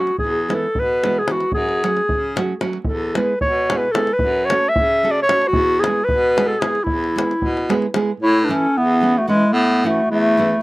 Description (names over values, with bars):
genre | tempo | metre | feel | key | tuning
balkan folk, Balkan wedding band | 225 BPM (eighths) | 5/8 | straight | E major | A4 = 440 Hz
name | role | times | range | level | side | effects
mellow clarinet | melody | 0.0-10.6 s | G#3 to E5 | -17 LUFS | equal | none
nylon-string guitar | accompaniment | 0.0-10.5 s | E3 to A4 | -23 LUFS | right 3 dB | none
davul | percussion | 0.1-8.1 s | none | -24 LUFS | left 1 dB | none
clear baritone saxophone | bass | 0.2-10.5 s | E2 to C#3 | -24 LUFS | equal | none
mellow accordion | second line | 8.2-10.6 s | E4 to C#5 | -26 LUFS | equal | slapback echo
room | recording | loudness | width
light reverb | recorded outdoors, with no room sound | -16 LUFS | side -20 dB against mid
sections
0.0-8.2 A section; 8.2-10.6 B section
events
none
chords
0.2 E; 1.5 F#m; 2.9 E; 4.2 F#m; 5.5 E; 8.2 A